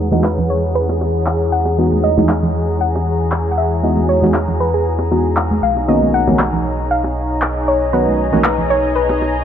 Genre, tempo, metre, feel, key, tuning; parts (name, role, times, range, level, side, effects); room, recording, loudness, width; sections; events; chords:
deep house; 117 BPM; 4/4; swing 54% on 16ths; E lydian; A4 = 439 Hz
soft round pluck; melody; 0.0-9.4 s; G#4 to F#5; -20 LUFS; equal; chorus, ping-pong delay
warm analog pad; sustained chords; 0.0-9.4 s; E3 to D#6; -23 LUFS; left 2 dB; chorus
deep mellow chord stab; stabs; 0.0-8.5 s; D#3 to F#4; -19 LUFS; left 1 dB; chorus, dub echo
rubbery square bass; bass; 0.0-9.4 s; B1 to E2; -20 LUFS; equal; tube saturation
clear studio violin section; texture; 0.0-9.4 s; G#4 to A#5; -29 LUFS; equal
granular cloud pad; texture; 0.0-9.4 s; G#4 to A#5; -25 LUFS; equal; built-in reverb
congas and bongos; percussion; 0.1-9.3 s; -21 LUFS; right 3 dB
electronic handclaps; drums; 0.2-8.6 s; -23 LUFS; left 1 dB; overdrive
moderate lush hall reverb, RT60 2.7 s; low-pass filter; -14 LUFS; side -9 dB against mid
0.0-9.4 A section
filter sweep on analog synth pad 0.0-9.4; filter sweep 0.0-9.4
0.0 Emaj9; 5.6 Bmaj9